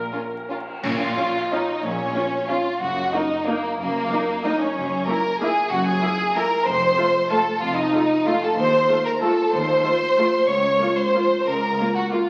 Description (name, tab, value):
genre	classical, orchestral ballroom waltz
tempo	186 BPM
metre	3/4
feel	uneven beats, rubato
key	Bb minor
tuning	A4 = 440 Hz
part	rich studio violin section	melody	0.0-12.3 s	Bb4 to Db6	-30 LUFS	equal	none
part	rich studio viola section	accompaniment	0.0-12.2 s	A3 to Bb4	-29 LUFS	equal	none
part	clear symphonic cello section	bass	0.0-11.7 s	Db2 to Bb2	-33 LUFS	equal	none
part	rich studio double bass section	bass	0.0-11.7 s	F1 to Eb2	-36 LUFS	equal	none
part	clear studio violin section	second line	0.1-12.3 s	Bb3 to Db5	-23 LUFS	equal	none
part	clash cymbals and concert bass drum	percussion	0.8-1.5 s	none	-36 LUFS	equal	none
room	wet recital hall reverb, RT60 1.4 s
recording	very old 78 rpm record, vinyl crackle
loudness	-21 LUFS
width	mono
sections	0.8-12.3 A section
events	band accent 0.8-1.2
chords	0.0 N.C.; 0.8 Bbm; 2.8 Ebm/Gb; 4.8 Gb7; 6.7 F; 8.6 F7/Eb; 10.5 Bbm/Db